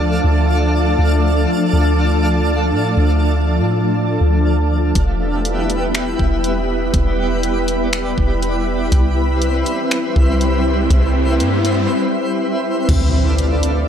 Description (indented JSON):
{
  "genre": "hip hop, atmospheric cloud-rap",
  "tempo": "121 BPM",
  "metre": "4/4",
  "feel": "half-time",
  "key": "D dorian",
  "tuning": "A4 = 443 Hz",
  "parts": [
    { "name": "shimmering ambient pad", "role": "sustained chords", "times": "0.0-13.9 s", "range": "F3 to D5", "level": "-18 LUFS", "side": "equal", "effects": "chorus, built-in reverb, sidechain pumping" },
    { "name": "soft 808-style bass", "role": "bass", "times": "0.0-13.9 s", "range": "E1 to A2", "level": "-17 LUFS", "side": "equal", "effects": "none" },
    { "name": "twinkling granular texture", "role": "texture", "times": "0.0-13.9 s", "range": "B3 to F5", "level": "-24 LUFS", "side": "equal", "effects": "built-in reverb" },
    { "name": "smooth R&B drum kit", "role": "drums", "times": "5.0-13.7 s", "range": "crash cymbal, finger snaps, hi-hat, kick drum", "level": "-19 LUFS", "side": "equal", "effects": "none" },
    { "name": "riser and impact", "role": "sound effects", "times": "9.8-13.9 s", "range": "none", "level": "-26 LUFS", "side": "right 1 dB", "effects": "none" }
  ],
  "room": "digital ambience",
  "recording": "dry, gritty hardware recording",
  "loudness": "-14 LUFS",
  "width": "side -8 dB against mid",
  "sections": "0.0-12.9 A section",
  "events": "riser 9.8-12.9; break 11.9-12.9; impact 12.9-13.9",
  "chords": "0.0 Dm; 5.0 Em; 8.9 Cmaj7; 12.9 Dm",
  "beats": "0.00 0.49 | 0.99 1.48 1.98 2.47 | 2.97 3.47 3.96 4.46 | 4.95 5.45 5.95 6.44 | 6.94 7.43 7.93 8.43 | 8.92 9.42 9.91 10.41 | 10.90 11.40 11.90 12.39 | 12.89 13.38 13.88"
}